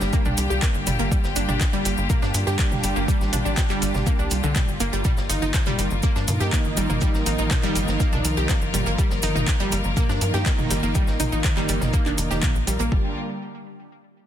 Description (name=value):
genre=melodic techno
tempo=122 BPM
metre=4/4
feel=straight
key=G minor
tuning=A4 = 439 Hz
part: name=dark chamber string section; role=sustained chords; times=0.0-13.1 s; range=D3 to Bb4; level=-30 LUFS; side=left 2 dB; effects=sidechain pumping
part: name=brassy analog pad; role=stabs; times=0.0-13.1 s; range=Eb3 to G4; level=-30 LUFS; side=right 3 dB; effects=chorus, sidechain pumping, ping-pong delay
part: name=tight sequencer bass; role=bass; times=0.0-13.1 s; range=F1 to G2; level=-26 LUFS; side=equal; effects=sidechain pumping
part: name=tight metal drum kit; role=drums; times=0.0-12.9 s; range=hi-hat, shaker, snare drum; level=-38 LUFS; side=right 1 dB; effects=none
part: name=cabasa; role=percussion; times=0.0-12.9 s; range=none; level=-34 LUFS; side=left 3 dB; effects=none
part: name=wide unison pluck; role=arpeggios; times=0.1-13.1 s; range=D3 to G4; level=-28 LUFS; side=equal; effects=sidechain pumping, ping-pong delay
part: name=electronic kick drum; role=drums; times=0.1-13.0 s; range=none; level=-22 LUFS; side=equal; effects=overdrive
part: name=deep house drum kit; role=drums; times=0.3-12.8 s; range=handclaps, hi-hat, toms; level=-29 LUFS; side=right 1 dB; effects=overdrive
room=light reverb, studio ambience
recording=dense, heavily limited modern master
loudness=-20 LUFS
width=side -10 dB against mid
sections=0.0-12.9 A section; 12.9-14.3 B section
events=drop 0.0-12.9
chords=0.0 Gm7; 5.0 Ebsus2/G; 12.9 Gm7